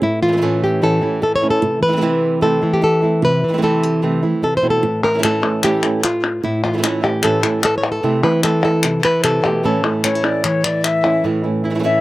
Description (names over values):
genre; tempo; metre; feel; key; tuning
flamenco; 150 BPM; 4/4; straight; unclear; A4 = 439 Hz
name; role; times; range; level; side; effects
flamenco guitar; melody; 0.0-12.0 s; A2 to C#5; -16 LUFS; equal; none
flamenco guitar; stabs; 0.0-12.0 s; A2 to E4; -20 LUFS; right 4 dB; slapback echo
palmas hand claps; percussion; 5.0-11.2 s; none; -20 LUFS; left 4 dB; none
concert flute; second line; 10.0-12.0 s; C#5 to E5; -18 LUFS; left 3 dB; none
room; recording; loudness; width
little or no reverb; recorded outdoors, with no room sound; -14 LUFS; side -17 dB against mid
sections
0.0-11.2 A section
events
none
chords
0.0 A; 1.6 C6; 4.8 A; 8.0 C6; 9.6 A